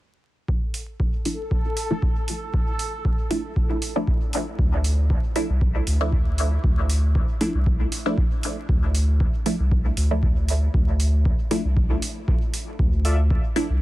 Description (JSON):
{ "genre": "dub techno", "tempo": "117 BPM", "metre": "4/4", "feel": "swing 54% on 16ths", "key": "D minor", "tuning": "A4 = 440 Hz", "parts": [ { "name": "electronic kick drum", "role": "drums", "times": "0.5-13.4 s", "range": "none", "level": "-23 LUFS", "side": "equal", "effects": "none" }, { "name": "bubbling stepped-filter texture", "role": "texture", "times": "0.5-4.6 s", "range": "A4", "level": "-34 LUFS", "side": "right 1 dB", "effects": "chorus, built-in reverb, sidechain pumping" }, { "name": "electronic hi-hat", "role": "drums", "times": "0.7-13.7 s", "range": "none", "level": "-31 LUFS", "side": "right 2 dB", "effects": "none" }, { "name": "filtered dub chord stab", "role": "stabs", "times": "1.3-13.7 s", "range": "F3 to E4", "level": "-28 LUFS", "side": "equal", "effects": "phaser, sidechain pumping, dub echo" }, { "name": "round analog bass", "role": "bass", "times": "4.6-13.8 s", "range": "C2 to D2", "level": "-21 LUFS", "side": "equal", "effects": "sidechain pumping" }, { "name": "warbly lo-fi synth keys", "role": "riff", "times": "13.0-13.2 s", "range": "F4 to E5", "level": "-30 LUFS", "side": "left 2 dB", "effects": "chorus, sidechain pumping, dub echo" } ], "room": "little or no reverb", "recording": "dense, heavily limited modern master, vinyl crackle", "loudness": "-20 LUFS", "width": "side -17 dB against mid", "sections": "0.5-4.6 A section; 4.6-13.8 B section", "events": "filter sweep on synth stab 0.5-4.6", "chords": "none" }